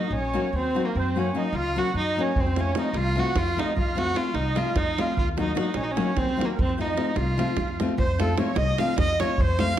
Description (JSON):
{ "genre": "balkan folk, Balkan wedding band", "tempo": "298 BPM (eighths)", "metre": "7/8", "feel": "straight", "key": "F phrygian dominant", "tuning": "A4 = 435 Hz", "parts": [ { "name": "dark fiddle", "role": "melody", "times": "0.0-9.8 s", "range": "Bb3 to F5", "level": "-27 LUFS", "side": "equal", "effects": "none" }, { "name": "musette accordion", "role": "second line", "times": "0.0-9.8 s", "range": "A4 to Gb5", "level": "-33 LUFS", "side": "right 4 dB", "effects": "none" }, { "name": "nylon-string guitar", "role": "accompaniment", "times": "0.0-9.7 s", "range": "F3 to Gb4", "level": "-29 LUFS", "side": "left 3 dB", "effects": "none" }, { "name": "upright bass", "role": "bass", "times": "0.1-9.7 s", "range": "Bb1 to Gb2", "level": "-28 LUFS", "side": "equal", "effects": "none" }, { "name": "davul", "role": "percussion", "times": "2.4-9.8 s", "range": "none", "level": "-28 LUFS", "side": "right 2 dB", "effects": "none" } ], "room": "moderate recital hall reverb, RT60 1.2 s", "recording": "dark, warm production", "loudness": "-22 LUFS", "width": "side -11 dB against mid", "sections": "0.0-8.0 A section; 8.0-9.8 B section", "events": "none", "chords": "0.0 Ebm; 1.0 Gb; 2.4 F; 5.2 Ebm; 6.6 F", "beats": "0.15 0.35 0.55 0.75 | 0.95 1.15 1.35 1.56 1.76 1.96 2.16 | 2.36 2.56 2.76 2.96 3.17 3.37 3.57 | 3.77 3.97 4.17 4.37 4.57 4.77 4.97 | 5.18 5.38 5.58 5.78 5.98 6.18 6.38 | 6.58 6.78 6.98 7.18 7.38 7.59 7.79 | 7.99 8.19 8.39 8.59 8.79 8.99 9.19 | 9.39 9.59 9.79" }